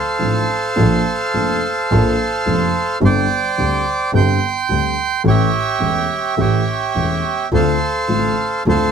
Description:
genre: tango.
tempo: 106 BPM.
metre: 4/4.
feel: rubato.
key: D minor.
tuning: A4 = 435 Hz.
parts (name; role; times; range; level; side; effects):
bandoneon; melody; 0.0-8.9 s; G4 to C6; -18 LUFS; right 3 dB; none.
dark concert grand piano; accompaniment; 0.2-8.9 s; E1 to A4; -19 LUFS; left 1 dB; none.
clear double bass; bass; 0.2-8.9 s; E1 to D2; -20 LUFS; right 1 dB; none.
room: light reverb.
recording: close, detailed microphones.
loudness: -15 LUFS.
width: side -7 dB against mid.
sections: 0.0-8.9 A section.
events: none.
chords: 0.0 Dm7; 0.8 Bbmaj7; 3.0 Gsus4; 5.2 A7; 7.5 Dm7.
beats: 0.20 | 0.77 1.33 1.90 2.45 | 3.02 3.57 4.13 4.69 | 5.25 5.81 6.38 6.94 | 7.51 8.08 8.65.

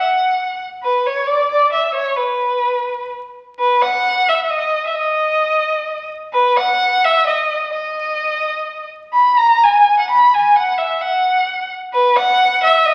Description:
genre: mexican folk.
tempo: 130 BPM.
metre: 3/4.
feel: straight.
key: B minor.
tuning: A4 = 439 Hz.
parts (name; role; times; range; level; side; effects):
clear violin; solo; 0.0-12.9 s; B4 to B5; -16 LUFS; equal; none.
room: wet large studio reverb, RT60 1.2 s.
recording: very old 78 rpm record, vinyl crackle.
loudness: -16 LUFS.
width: mono.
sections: 0.0-3.6 A section; 3.6-12.9 B section.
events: none.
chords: none.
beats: 0.36 | 0.81 1.26 1.72 | 2.18 2.64 3.11 | 3.57 4.03 4.49 | 4.95 5.41 5.87 | 6.33 6.79 7.26 | 7.73 8.19 8.66 | 9.13 9.61 10.07 | 10.54 11.00 11.46 | 11.93 12.39 12.86.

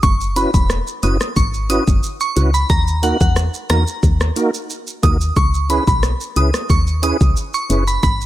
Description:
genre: dancehall.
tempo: 90 BPM.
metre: 4/4.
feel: straight.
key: unclear.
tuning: A4 = 440 Hz.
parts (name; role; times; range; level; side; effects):
glassy synth bell; melody; 0.0-8.2 s; F#5 to D#6; -21 LUFS; right 2 dB; chorus, phaser.
woody FM bass; bass; 0.0-8.3 s; E1 to E2; -17 LUFS; equal; none.
deep house drum kit; drums; 0.0-8.3 s; hi-hat, kick drum, rim click, shaker; -18 LUFS; equal; none.
tonewheel organ; accompaniment; 0.4-7.8 s; A#3 to B4; -22 LUFS; right 2 dB; chorus vibrato, slow rotary speaker, sidechain pumping.
room: digital ambience.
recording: none.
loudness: -14 LUFS.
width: side -14 dB against mid.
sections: 0.0-8.3 A section.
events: none.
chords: 0.0 F#7sus4; 2.7 D#m; 5.4 C#m7.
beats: | 0.03 0.70 1.36 2.03 | 2.70 3.36 4.03 4.70 | 5.36 6.03 6.70 7.36 | 8.03.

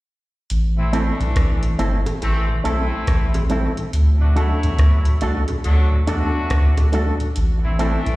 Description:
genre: roots reggae.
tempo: 70 BPM.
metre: 4/4.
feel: swing 63% on 16ths.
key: A dorian.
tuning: A4 = 440 Hz.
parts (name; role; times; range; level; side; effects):
soft dub sub bass; bass; 0.5-8.2 s; G1 to E2; -18 LUFS; equal; none.
soft vintage rhythm box; drums; 0.5-8.2 s; hi-hat, kick drum, rim click; -23 LUFS; equal; dub echo.
clear horn section; second line; 0.8-8.2 s; E3 to F#4; -27 LUFS; left 1 dB; tape echo, slapback echo.
mellow tonewheel organ; accompaniment; 0.8-8.1 s; D2 to F#4; -30 LUFS; equal; none.
electric guitar with an envelope filter; accompaniment; 0.9-8.0 s; C4 to A4; -28 LUFS; right 3 dB; analog chorus, tape echo, slapback echo.
barky reed electric piano; stabs; 0.9-8.0 s; A3 to A4; -29 LUFS; left 4 dB; overdrive, medium tremolo, slapback echo.
bongos; percussion; 2.1-7.2 s; none; -32 LUFS; right 3 dB; slapback echo.
room: light reverb.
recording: live gig heard through the venue's PA, recital hall reverb.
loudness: -16 LUFS.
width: side -19 dB against mid.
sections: 0.5-8.2 A section.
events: none.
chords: 0.5 Am; 3.9 D; 7.4 Am.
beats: | 0.50 1.36 2.22 3.08 | 3.93 4.79 5.65 6.51 | 7.36.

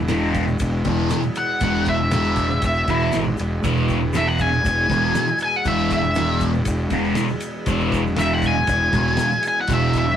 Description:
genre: psychedelic rock.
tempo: 119 BPM.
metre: 4/4.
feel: straight.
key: E major.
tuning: A4 = 440 Hz.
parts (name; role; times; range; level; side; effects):
combo organ; sustained chords; 0.0-10.2 s; G#3 to E4; -33 LUFS; right 3 dB; none.
fuzz fingered electric bass; bass; 0.0-10.2 s; E1 to G#1; -23 LUFS; equal; overdrive.
pedal harmonium; drone; 0.0-10.2 s; E2 to B2; -35 LUFS; equal; none.
thick fuzz guitar; riff; 0.1-10.0 s; E2 to E3; -22 LUFS; right 1 dB; distortion, phaser.
cloth-damped thuddy drum kit; drums; 0.1-10.1 s; kick drum, ride cymbal, snare drum; -28 LUFS; equal; none.
tube shaker; percussion; 0.1-10.1 s; none; -44 LUFS; left 5 dB; none.
octave-fuzz lead guitar; melody; 1.4-10.2 s; E4 to G#5; -21 LUFS; left 1 dB; wah, distortion.
room: moderate small room reverb, RT60 0.5 s.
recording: rough rehearsal-room recording, warm saturation.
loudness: -18 LUFS.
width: side -9 dB against mid.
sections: 0.0-10.2 A section.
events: lead electric guitar solo 0.0-10.2.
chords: 0.0 E.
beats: 0.11 0.62 1.12 | 1.63 2.13 2.64 3.14 | 3.65 4.15 4.66 5.16 | 5.67 6.17 6.67 7.18 | 7.68 8.19 8.69 9.19 | 9.70.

